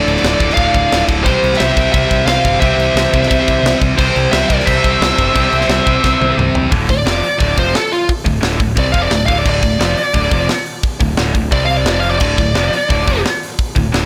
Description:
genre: heavy metal.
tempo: 176 BPM.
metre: 4/4.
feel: straight.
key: D minor.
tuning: A4 = 437 Hz.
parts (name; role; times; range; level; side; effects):
high-gain lead guitar; melody; 0.0-13.2 s; F4 to F5; -19 LUFS; equal; distortion, digital delay.
high-gain lead guitar; second line; 0.0-6.4 s; G4 to D5; -24 LUFS; equal; distortion.
muted chamber string section; sustained chords; 0.0-6.7 s; E3 to D5; -30 LUFS; equal; none.
heavy high-gain guitar; riff; 0.0-14.1 s; D2 to C4; -21 LUFS; equal; distortion.
high-gain distorted guitar; riff; 0.0-6.7 s; D2 to C4; -22 LUFS; equal; distortion.
picked electric bass; bass; 0.1-14.1 s; D1 to C2; -21 LUFS; equal; tube saturation.
tight metal drum kit; drums; 0.1-14.0 s; crash cymbal, hi-hat, kick drum, snare drum, toms; -20 LUFS; equal; none.
room: little or no reverb.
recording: blown-out, overdriven recording, overdrive.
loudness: -14 LUFS.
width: mono.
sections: 0.0-6.7 A section; 6.7-14.1 B section.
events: drum fill 6.0-6.7; lead electric guitar solo 6.7-14.1.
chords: 0.0 Dm; 1.2 C; 6.7 Dm; 11.5 C5; 11.9 F5; 12.2 Dm.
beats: 0.22 0.56 0.91 | 1.25 1.59 1.93 2.27 | 2.61 2.96 3.30 3.64 | 3.98 4.32 4.67 5.01 | 5.35 5.69 6.03 6.37 | 6.71 7.06 7.40 7.74 | 8.08 8.43 8.77 9.11 | 9.45 9.80 10.14 10.48 | 10.83 11.17 11.52 11.86 | 12.21 12.55 12.90 13.24 | 13.59 13.93.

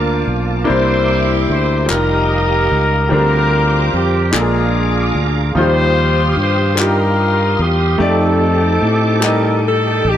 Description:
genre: slow gospel.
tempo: 49 BPM (dotted quarters).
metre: 6/8.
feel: straight.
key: Bb major.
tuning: A4 = 441 Hz.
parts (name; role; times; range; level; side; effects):
mellow horn section; melody; 0.0-10.2 s; C4 to C5; -17 LUFS; left 1 dB; none.
clear baby grand piano; accompaniment; 0.0-10.2 s; Bb2 to A5; -19 LUFS; equal; none.
bright tonewheel organ; sustained chords; 0.0-10.2 s; Bb3 to Eb6; -22 LUFS; right 3 dB; fast rotary speaker, chorus vibrato.
fingered electric bass; bass; 0.0-10.2 s; F1 to A2; -17 LUFS; equal; none.
group handclap; percussion; 1.9-9.6 s; none; -19 LUFS; left 3 dB; none.
room: light reverb.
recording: none.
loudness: -12 LUFS.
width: side -10 dB against mid.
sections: 0.7-10.2 A section.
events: none.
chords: 0.0 Bbmaj7; 0.7 C9; 1.9 F9sus4; 3.1 Bb69/D; 4.3 Bb7; 5.6 Eb69; 8.0 F13.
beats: | 0.67 1.89 | 3.11 4.34 | 5.56 6.78 | 8.01 9.23.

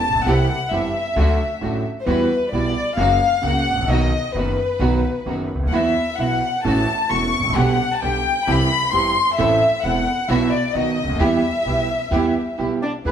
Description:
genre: tango.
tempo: 132 BPM.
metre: 4/4.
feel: rubato.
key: E minor.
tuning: A4 = 441 Hz.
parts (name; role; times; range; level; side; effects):
warm chamber violin section; second line; 0.0-13.1 s; B3 to C#6; -20 LUFS; left 3 dB; none.
bright concert grand piano; accompaniment; 0.1-13.1 s; E1 to A4; -22 LUFS; right 3 dB; none.
upright bass; bass; 0.1-13.1 s; E1 to E2; -23 LUFS; equal; none.
rich studio string section; stabs; 0.3-13.1 s; G3 to A4; -28 LUFS; right 1 dB; none.
bandoneon; melody; 12.8-13.1 s; B4 to D5; -27 LUFS; equal; none.
room: wet large studio reverb, RT60 1.2 s.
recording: band playing live in one room.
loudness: -17 LUFS.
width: side -9 dB against mid.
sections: 0.0-13.1 A section.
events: violin section solo 0.0-13.1.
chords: 0.3 C; 1.2 D; 2.1 Emadd9; 3.0 F#; 3.9 B; 5.7 Esus2; 6.7 A6; 7.6 G/B; 8.5 C; 9.4 Am; 10.3 Bsus4; 10.8 B; 11.2 Em.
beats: | 0.26 0.72 1.17 1.63 | 2.08 2.53 2.98 3.44 | 3.90 4.35 4.81 5.27 | 5.73 6.19 6.65 7.11 | 7.57 8.02 8.48 8.94 | 9.39 9.84 10.30 10.75 | 11.21 11.66 12.12 12.59 | 13.05.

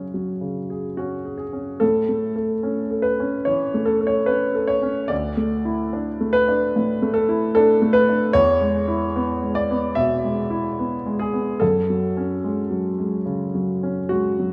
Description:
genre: neoclassical minimalist piano.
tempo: 73 BPM.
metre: 4/4.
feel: rubato.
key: unclear.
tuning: A4 = 441 Hz.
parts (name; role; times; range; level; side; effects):
clear concert grand piano; solo; 0.0-14.5 s; D2 to E5; -22 LUFS; equal; none.
room: moderate lush hall reverb, RT60 2.6 s.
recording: rough home demo mix.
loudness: -22 LUFS.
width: mono.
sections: 0.0-1.8 A section; 1.8-14.5 A section.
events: none.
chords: 0.0 F#sus2; 1.8 A; 5.1 Dsus2; 8.4 E; 11.6 F#madd9.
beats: 0.13 0.98 | 1.82 2.65 3.47 4.29 | 5.11 5.92 6.74 7.55 | 8.36 9.16 9.97 10.78 | 11.61 12.44 13.27 14.11.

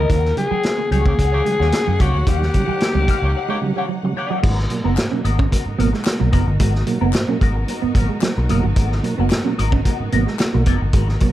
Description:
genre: funk.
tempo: 111 BPM.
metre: 4/4.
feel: straight.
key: G# minor.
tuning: A4 = 439 Hz.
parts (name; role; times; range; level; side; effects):
growling alto saxophone; melody; 0.0-3.9 s; F#4 to A#4; -21 LUFS; left 3 dB; none.
electric guitar at the edge of break-up; accompaniment; 0.0-11.3 s; B3 to G5; -29 LUFS; left 7 dB; wah, phaser.
warm studio string section; sustained chords; 0.0-11.3 s; D#3 to F#5; -32 LUFS; right 1 dB; none.
clean electric guitar; riff; 0.0-11.2 s; D#3 to C#4; -26 LUFS; right 8 dB; none.
vintage muted fingered electric bass; bass; 0.0-11.2 s; F#1 to F#2; -19 LUFS; equal; none.
vintage drum kit; drums; 0.1-11.3 s; crash cymbal, hi-hat, kick drum, snare drum; -20 LUFS; equal; none.
mellow tonewheel organ; stabs; 0.4-11.3 s; G#2 to A#3; -25 LUFS; right 3 dB; slow rotary speaker.
warm horn section; second line; 1.1-4.4 s; A#3 to C#5; -30 LUFS; right 1 dB; none.
group handclap; percussion; 5.0-10.5 s; none; -34 LUFS; left 6 dB; none.
room: light reverb.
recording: dark, warm production.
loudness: -16 LUFS.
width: side -14 dB against mid.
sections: 0.0-4.4 A section; 4.4-11.3 B section.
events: break 3.4-4.4.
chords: 0.1 D#7#9; 4.4 G#m9.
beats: | 0.10 0.64 1.18 1.73 | 2.27 2.81 3.35 3.89 | 4.44 4.98 5.52 6.06 | 6.60 7.15 7.69 8.23 | 8.77 9.31 9.86 10.40 | 10.94.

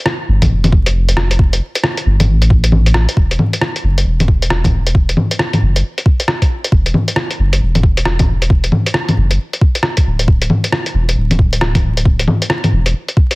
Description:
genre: future garage.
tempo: 135 BPM.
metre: 4/4.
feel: swing 63% on 16ths.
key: unclear.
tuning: A4 = 441 Hz.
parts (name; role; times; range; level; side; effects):
lo-fi sampler-style drum kit; drums; 0.1-13.4 s; bongos, hi-hat, rim click; -15 LUFS; left 1 dB; none.
soft dub sub bass; bass; 0.3-12.9 s; D1 to A1; -14 LUFS; equal; none.
electronic kick drum; drums; 0.4-13.3 s; none; -12 LUFS; equal; none.
room: digital ambience.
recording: dense, heavily limited modern master, vinyl crackle.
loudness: -11 LUFS.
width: side -23 dB against mid.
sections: 0.0-3.2 A section; 3.2-13.4 B section.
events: none.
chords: none.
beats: 0.06 0.50 0.95 | 1.39 1.84 2.28 2.73 | 3.17 3.62 4.06 4.50 | 4.95 5.39 5.84 6.28 | 6.73 7.17 7.62 8.06 | 8.50 8.95 9.39 9.84 | 10.28 10.73 11.17 11.62 | 12.06 12.50 12.95.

